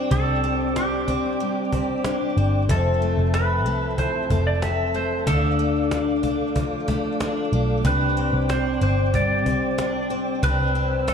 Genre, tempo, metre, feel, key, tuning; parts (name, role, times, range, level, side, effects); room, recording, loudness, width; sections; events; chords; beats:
dream pop; 93 BPM; 4/4; straight; C major; A4 = 440 Hz
mellow tonewheel organ; sustained chords; 0.0-11.1 s; C4 to E6; -29 LUFS; right 1 dB; chorus vibrato, stopped rotary speaker
picked twelve-string acoustic guitar; arpeggios; 0.0-11.1 s; F2 to D4; -25 LUFS; left 3 dB; wide subtle chorus, ping-pong delay
vintage muted picked electric bass; bass; 0.0-11.1 s; F1 to D2; -23 LUFS; equal
clean lap steel guitar; melody; 0.1-11.1 s; G4 to E5; -26 LUFS; right 2 dB; ping-pong delay
cajon; drums; 0.1-11.1 s; -28 LUFS; equal
moderate concert hall reverb, RT60 2.1 s; dark, warm production; -20 LUFS; side -7 dB against mid
0.0-11.1 A section
0.0 Csus2; 2.7 Fmaj7; 5.3 Dm; 7.9 Csus2
| 0.11 0.76 1.40 2.05 | 2.69 3.34 3.98 4.63 | 5.27 5.92 6.56 7.21 | 7.85 8.50 9.14 9.79 | 10.43 11.08